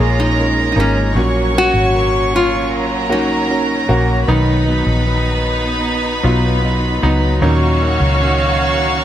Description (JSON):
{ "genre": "pop ballad", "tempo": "77 BPM", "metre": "4/4", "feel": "straight", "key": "unclear", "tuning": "A4 = 440 Hz", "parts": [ { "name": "nylon-string guitar", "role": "melody", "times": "0.0-3.9 s", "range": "Db4 to Gb4", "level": "-18 LUFS", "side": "left 1 dB", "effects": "tape echo" }, { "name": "warm studio violin section", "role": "second line", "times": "0.0-9.0 s", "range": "Bb4 to Db6", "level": "-20 LUFS", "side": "right 1 dB", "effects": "none" }, { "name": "warm concert grand piano", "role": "accompaniment", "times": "0.0-9.0 s", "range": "Bb2 to Ab4", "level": "-20 LUFS", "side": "left 1 dB", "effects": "none" }, { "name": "warm studio string section", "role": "sustained chords", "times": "0.0-9.0 s", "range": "Eb3 to F5", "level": "-22 LUFS", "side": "right 1 dB", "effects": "none" }, { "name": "fingerpicked plugged-in steel-string acoustic guitar", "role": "arpeggios", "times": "0.0-9.0 s", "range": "B2 to Bb4", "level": "-24 LUFS", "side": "right 3 dB", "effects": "none" }, { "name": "vintage muted fingered electric bass", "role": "bass", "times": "0.0-9.0 s", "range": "Ab1 to Eb2", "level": "-17 LUFS", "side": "equal", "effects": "none" } ], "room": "light reverb, studio ambience", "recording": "none", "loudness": "-13 LUFS", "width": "side -11 dB against mid", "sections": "0.0-9.0 A section", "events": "none", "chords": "0.0 Bbm7; 1.2 Gb; 4.3 Bmaj7; 7.4 Ebm7" }